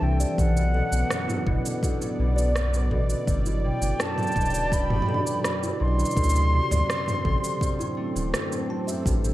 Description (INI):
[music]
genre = folktronica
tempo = 83 BPM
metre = 4/4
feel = straight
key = unclear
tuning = A4 = 440 Hz
[part]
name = mellow silver concert flute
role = melody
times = 0.0-8.3 s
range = F#5 to C6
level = -30 LUFS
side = equal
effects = diffuse ambient delay
[part]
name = warm analog pad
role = sustained chords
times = 0.0-9.3 s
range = F#3 to G5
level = -31 LUFS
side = right 2 dB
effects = chorus
[part]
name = concert harp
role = arpeggios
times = 0.0-9.3 s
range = F#2 to A3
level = -31 LUFS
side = left 1 dB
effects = diffuse ambient delay
[part]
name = warm sub bass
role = bass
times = 0.0-9.3 s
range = D1 to D2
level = -24 LUFS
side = equal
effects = none
[part]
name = kalimba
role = second line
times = 0.2-9.2 s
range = E4 to A5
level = -33 LUFS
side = left 1 dB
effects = diffuse ambient delay
[part]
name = organic electronic drum kit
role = drums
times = 0.2-9.3 s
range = cabasa, rim click, toms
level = -31 LUFS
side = right 1 dB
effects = none
[part]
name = electronic kick drum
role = drums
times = 0.4-9.2 s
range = none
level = -27 LUFS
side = equal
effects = none
[sound]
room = moderate plate reverb, RT60 2.1 s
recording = dreamy mix soaked in reverb, vinyl crackle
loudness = -22 LUFS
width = side -15 dB against mid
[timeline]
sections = 0.0-9.3 A section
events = none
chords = 0.4 Bm7; 3.3 Gmaj7; 6.2 D7